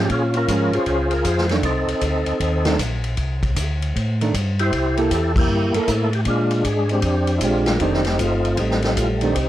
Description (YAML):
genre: soul jazz organ trio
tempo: 156 BPM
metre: 4/4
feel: swing 64% on 8ths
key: unclear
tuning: A4 = 439 Hz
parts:
  - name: overdriven tonewheel organ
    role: melody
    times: 0.0-9.5 s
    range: G3 to Db5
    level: -21 LUFS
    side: equal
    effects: slow rotary speaker, chorus vibrato, plate reverb
  - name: hollow-body jazz guitar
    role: accompaniment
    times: 0.0-9.3 s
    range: Eb3 to A4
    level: -24 LUFS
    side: right 4 dB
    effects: none
  - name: mellow tonewheel organ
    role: bass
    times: 0.0-9.5 s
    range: F1 to Bb2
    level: -22 LUFS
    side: equal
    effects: chorus vibrato, slow rotary speaker
  - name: swinging big-band drum kit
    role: drums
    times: 0.1-9.5 s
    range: crash cymbal, hi-hat, kick drum, ride cymbal, snare drum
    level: -25 LUFS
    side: left 1 dB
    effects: none
room: light reverb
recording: worn, warbling old tape, cassette tape, warbly pitch drift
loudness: -18 LUFS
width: side -13 dB against mid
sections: 0.0-9.5 A section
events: band accent 5.3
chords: 0.1 Bbm7; 1.6 Cm13; 4.7 C6; 6.3 Bb13; 7.8 F13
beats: | 0.09 0.48 0.86 1.25 | 1.64 2.02 2.41 2.79 | 3.18 3.56 3.95 4.33 | 4.72 5.11 5.49 5.88 | 6.26 6.65 7.04 7.42 | 7.81 8.19 8.58 8.97 | 9.35